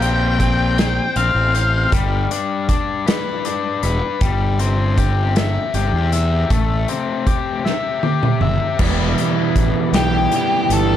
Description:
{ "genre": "indie rock", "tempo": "52 BPM (dotted quarters)", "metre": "6/8", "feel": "straight", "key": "unclear", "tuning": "A4 = 440 Hz", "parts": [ { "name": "octave-fuzz lead guitar", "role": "melody", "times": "0.0-1.9, 10.0-11.0 s", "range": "G4 to G5", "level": "-20 LUFS", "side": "left 2 dB", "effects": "distortion, analog delay" }, { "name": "biting overdriven guitar", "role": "riff", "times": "0.0-11.0 s", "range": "E3 to E5", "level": "-21 LUFS", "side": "left 6 dB", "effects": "none" }, { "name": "fuzz fingered electric bass", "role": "bass", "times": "0.0-11.0 s", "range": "E1 to E2", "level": "-19 LUFS", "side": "equal", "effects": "overdrive" }, { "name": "loose indie drum kit", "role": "drums", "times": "0.0-10.9 s", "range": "crash cymbal, hi-hat, kick drum, snare drum, toms", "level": "-21 LUFS", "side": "equal", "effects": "none" }, { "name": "crunchy overdriven guitar", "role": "riff", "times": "8.8-11.0 s", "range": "E2 to G4", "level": "-20 LUFS", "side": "right 10 dB", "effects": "analog chorus, analog delay" } ], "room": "light reverb, small room ambience", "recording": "echo-heavy mix", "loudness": "-16 LUFS", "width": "side -10 dB against mid", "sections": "0.0-8.8 A section; 8.8-11.0 B section", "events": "drum fill 7.6-8.8; lead electric guitar solo 8.8-11.0", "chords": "0.0 Bbsus2; 1.9 G; 4.2 C/G; 6.5 Am7; 8.8 Em", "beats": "0.78 | 1.92 3.06 | 4.21 5.36 | 6.50 7.65 | 8.79 9.93" }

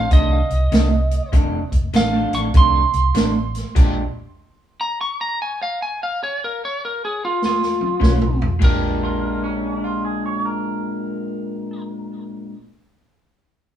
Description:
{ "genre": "electric blues shuffle", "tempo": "99 BPM", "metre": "4/4", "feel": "swing 65% on 8ths", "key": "Bb mixolydian", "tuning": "A4 = 442 Hz", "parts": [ { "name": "lightly driven lead guitar", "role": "melody", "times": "0.0-11.8 s", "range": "F4 to Db6", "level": "-22 LUFS", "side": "right 2 dB", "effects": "digital delay" }, { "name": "electric guitar through a small old amp", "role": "riff", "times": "0.0-4.0, 8.0-12.6 s", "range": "F2 to G4", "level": "-24 LUFS", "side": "left 2 dB", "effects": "none" }, { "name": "vintage muted fingered electric bass", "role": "bass", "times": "0.0-4.1, 8.0-12.5 s", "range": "F1 to C2", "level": "-21 LUFS", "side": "equal", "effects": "none" }, { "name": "vintage drum kit", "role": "drums", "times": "0.1-8.8 s", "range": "crash cymbal, hi-hat, kick drum, snare drum, toms", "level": "-17 LUFS", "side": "right 1 dB", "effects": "none" }, { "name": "electric guitar through a small old amp", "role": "second line", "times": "9.0-12.5 s", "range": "Db4 to Db5", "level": "-29 LUFS", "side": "right 4 dB", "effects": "phaser" } ], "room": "light reverb", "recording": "band playing live in one room, small room ambience", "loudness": "-17 LUFS", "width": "side -10 dB against mid", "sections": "0.0-8.6 A section; 8.6-11.0 B section", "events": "stop 3.8-8.0; drum fill 7.4-8.6", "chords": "0.0 F6; 3.8 Bb6; 8.0 B9; 8.6 Bb6", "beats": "0.11 0.72 | 1.33 1.93 2.54 3.15 | 3.76 4.36 4.97 5.58 | 6.19 6.79 7.40 8.01 | 8.61 9.22 9.83 10.43" }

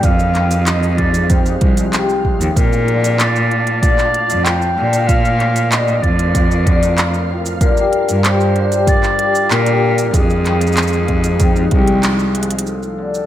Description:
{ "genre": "folktronica", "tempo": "95 BPM", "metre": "4/4", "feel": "straight", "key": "Bb major", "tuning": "A4 = 440 Hz", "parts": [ { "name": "dark clarinet", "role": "melody", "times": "0.0-13.3 s", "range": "Ab4 to G5", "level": "-20 LUFS", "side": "equal", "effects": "digital delay" }, { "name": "warbly tape-like pad", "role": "sustained chords", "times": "0.0-13.3 s", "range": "F3 to A5", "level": "-26 LUFS", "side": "equal", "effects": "chorus, built-in reverb, vintage 12-bit sampler grit" }, { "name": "cimbalom", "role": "arpeggios", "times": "0.0-13.3 s", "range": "A2 to Ab3", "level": "-21 LUFS", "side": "left 3 dB", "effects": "low-pass filter, digital delay" }, { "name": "bright cello", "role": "bass", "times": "0.0-12.4 s", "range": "C2 to Bb2", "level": "-17 LUFS", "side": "equal", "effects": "none" }, { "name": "electronic kick drum", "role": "drums", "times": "0.0-11.8 s", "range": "none", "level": "-16 LUFS", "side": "right 1 dB", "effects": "none" }, { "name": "organic electronic drum kit", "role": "drums", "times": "0.0-13.3 s", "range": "handclaps, hi-hat, shaker", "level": "-22 LUFS", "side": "right 1 dB", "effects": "none" }, { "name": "flickering grainy texture", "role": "texture", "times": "0.0-13.3 s", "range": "F4 to F5", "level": "-28 LUFS", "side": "right 1 dB", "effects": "built-in reverb" } ], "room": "light reverb, digital ambience", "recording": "none", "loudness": "-12 LUFS", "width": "side -12 dB against mid", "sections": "0.0-12.7 A section", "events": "break 12.0-12.7; band accent 12.0-12.4; drum fill 12.4-12.7", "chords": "0.0 Fm7; 2.6 Bbmaj7; 7.6 Gm7; 10.1 Fm7; 12.7 Bbmaj7 (rootless)", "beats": "| 0.04 0.67 1.30 1.93 | 2.56 3.19 3.83 4.46 | 5.09 5.72 6.35 6.98 | 7.61 8.25 8.88 9.51 | 10.14 10.77 11.40 12.04 | 12.67" }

